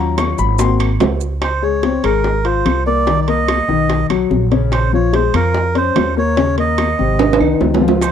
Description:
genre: Afro-Cuban jazz.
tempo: 145 BPM.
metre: 4/4.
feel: straight.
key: Db major.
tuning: A4 = 440 Hz.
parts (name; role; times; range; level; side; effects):
warm concert grand piano; accompaniment; 0.0-8.1 s; C3 to Db6; -17 LUFS; left 9 dB; none.
upright bass; bass; 0.0-8.1 s; Ab1 to F2; -18 LUFS; right 1 dB; none.
bongos; percussion; 0.2-8.1 s; none; -22 LUFS; left 5 dB; none.
claves; percussion; 0.2-8.1 s; none; -33 LUFS; right 8 dB; none.
maracas; percussion; 0.2-1.4, 8.0-8.1 s; none; -29 LUFS; right 23 dB; none.
timbales; percussion; 0.2-8.1 s; none; -20 LUFS; right 8 dB; none.
melodica; melody; 1.4-8.1 s; Bb4 to Eb5; -19 LUFS; right 4 dB; slapback echo.
room: small room ambience.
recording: dry, close 1970s-style studio recording.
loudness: -13 LUFS.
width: side -8 dB against mid.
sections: 0.0-1.4 A section; 1.4-8.1 B section.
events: grand piano solo 0.0-1.4; drum fill 7.2-8.0.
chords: 0.0 Ebm7; 0.6 Ab7; 1.4 Dbmaj7; 3.1 Cm9; 3.9 Cb; 4.7 Bbm9; 6.4 Eb5; 7.2 Ab6.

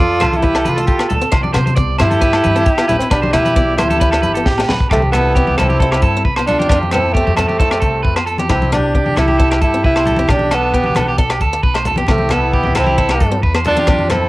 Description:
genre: highlife guitar band.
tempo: 134 BPM.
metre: 4/4.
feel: straight.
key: C major.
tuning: A4 = 440 Hz.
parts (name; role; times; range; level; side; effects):
breathy tenor saxophone; melody; 0.0-14.3 s; A3 to F4; -17 LUFS; right 1 dB; cassette tape.
warm trumpet; second line; 0.0-14.3 s; C4 to A4; -25 LUFS; left 2 dB; none.
picked swing-style acoustic guitar; accompaniment; 0.0-14.3 s; A3 to G4; -25 LUFS; left 3 dB; none.
electric guitar at the edge of break-up; arpeggios; 0.0-14.3 s; G4 to D5; -19 LUFS; right 3 dB; none.
upright bass; bass; 0.0-14.3 s; G1 to C3; -19 LUFS; equal; none.
tight funk drum kit; drums; 0.2-14.2 s; hi-hat, kick drum, rim click, snare drum; -17 LUFS; equal; cassette tape.
agogo bells; percussion; 0.2-14.2 s; none; -26 LUFS; left 3 dB; none.
congas; percussion; 0.2-14.2 s; none; -23 LUFS; left 1 dB; none.
room: light reverb, small room ambience.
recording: home recording on cassette.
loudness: -12 LUFS.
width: side -19 dB against mid.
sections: 0.0-4.9 A section; 4.9-14.3 B section.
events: drum fill 4.5-4.9.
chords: 0.0 F; 1.3 C; 3.1 G6/B; 4.9 C; 6.7 F; 8.5 C; 10.3 G/B; 12.1 C.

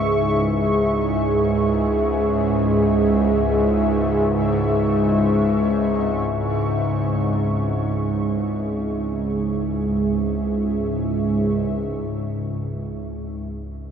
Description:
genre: dark ambient drone.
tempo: free time.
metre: none.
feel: none.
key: unclear.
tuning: A4 = 440 Hz.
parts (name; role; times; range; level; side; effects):
dark analog pad; sustained chords; 0.0-11.7 s; G#4 to C#6; -24 LUFS; left 1 dB; chorus.
quartz singing bowl; arpeggios; 0.0-13.9 s; C#3 to C#4; -41 LUFS; left 2 dB; none.
bowed-like drone; drone; 0.0-13.9 s; C#2 to G#2; -20 LUFS; right 1 dB; built-in reverb.
room: wet huge ambient reverb, RT60 9.3 s.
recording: worn, warbling old tape, cassette tape, warbly pitch drift.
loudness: -18 LUFS.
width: side -8 dB against mid.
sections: 0.0-11.7 A section; 11.7-13.9 B section.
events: filter sweep on synth drone 11.7-13.9.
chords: 0.0 C#m; 11.7 C#5.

